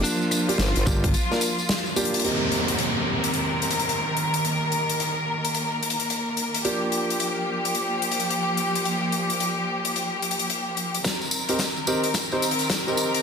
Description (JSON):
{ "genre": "glitch hop", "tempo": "109 BPM", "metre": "4/4", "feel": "swing 63% on 16ths", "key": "C minor", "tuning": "A4 = 441 Hz", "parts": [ { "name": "lightly driven lead guitar", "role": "melody", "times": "0.0-0.5 s", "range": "D4", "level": "-33 LUFS", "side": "left 1 dB", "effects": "dub echo" }, { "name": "rich studio string section", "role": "sustained chords", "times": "0.0-13.2 s", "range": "Eb3 to Bb4", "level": "-26 LUFS", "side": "equal", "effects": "vintage 12-bit sampler grit, sidechain pumping, low-pass filter" }, { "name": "warm grand piano", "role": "stabs", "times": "0.0-13.2 s", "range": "Bb3 to C5", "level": "-29 LUFS", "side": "right 1 dB", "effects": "sidechain pumping, low-pass filter, dub echo" }, { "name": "formant-sweep wobble bass", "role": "bass", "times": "0.0-0.8 s", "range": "G1", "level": "-23 LUFS", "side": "equal", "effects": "chorus, tube saturation" }, { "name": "big rock drum kit", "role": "drums", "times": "0.0-13.2 s", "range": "hi-hat, rim click, snare drum, tambourine", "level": "-27 LUFS", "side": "left 2 dB", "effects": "soft clipping on snare" }, { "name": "gritty slap bass", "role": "bass", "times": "0.9-1.1 s", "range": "G1", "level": "-24 LUFS", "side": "equal", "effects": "overdrive" }, { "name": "electronic kick drum", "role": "drums", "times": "0.9-1.1, 11.0-12.8 s", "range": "none", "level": "-27 LUFS", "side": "equal", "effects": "overdrive, high-pass filter on kick, high-pass filter on room" }, { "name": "downlifter", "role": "sound effects", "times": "2.2-6.6 s", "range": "none", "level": "-28 LUFS", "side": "equal", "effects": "none" } ], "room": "wet small room reverb, RT60 0.6 s", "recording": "dense, heavily limited modern master", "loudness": "-22 LUFS", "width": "side -6 dB against mid", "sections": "0.0-2.2 A section; 2.2-11.0 B section; 11.0-13.2 C section", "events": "drum fill 2.0, 11.0-13.2; build-up 11.0-13.2", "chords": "0.0 Gm7; 2.2 Cm7; 6.6 Gm7; 11.0 Cm7", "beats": "| 0.04 0.59 1.14 1.69 | 2.24 2.79 3.34 3.89 | 4.44 4.99 5.54 6.09 | 6.64 7.20 7.75 8.30 | 8.85 9.40 9.95 10.50 | 11.05 11.60 12.15 12.70" }